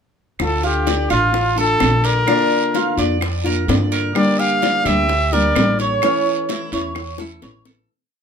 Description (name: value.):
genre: latin, Cuban son and guajira.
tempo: 128 BPM.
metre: 4/4.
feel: straight.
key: D harmonic minor.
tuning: A4 = 445 Hz.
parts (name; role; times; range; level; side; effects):
breathy trumpet; melody; 0.4-6.7 s; F4 to F5; -19 LUFS; equal; none.
nylon-string guitar; accompaniment; 0.4-7.9 s; D3 to G4; -22 LUFS; left 2 dB; none.
upright bass; bass; 0.4-7.8 s; A1 to G2; -22 LUFS; right 1 dB; none.
bongos; percussion; 0.4-7.8 s; none; -25 LUFS; left 3 dB; none.
claves; percussion; 0.4-7.2 s; none; -27 LUFS; right 8 dB; none.
guiro; percussion; 0.4-7.9 s; none; -31 LUFS; right 6 dB; none.
Cuban tres; arpeggios; 0.6-7.9 s; C#4 to D5; -22 LUFS; right 2 dB; none.
room: light reverb.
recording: minimal, uncompressed stereo recording.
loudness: -15 LUFS.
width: side -7 dB against mid.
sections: 0.4-7.9 verse.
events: fade-out 6.0-7.9; drum fill 7.2-7.9.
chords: 0.4 Dm; 2.3 Bb; 4.2 Gm; 6.0 A.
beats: | 0.40 0.87 1.34 1.81 | 2.28 2.75 3.22 3.69 | 4.15 4.62 5.09 5.56 | 6.03 6.49 6.96 7.42.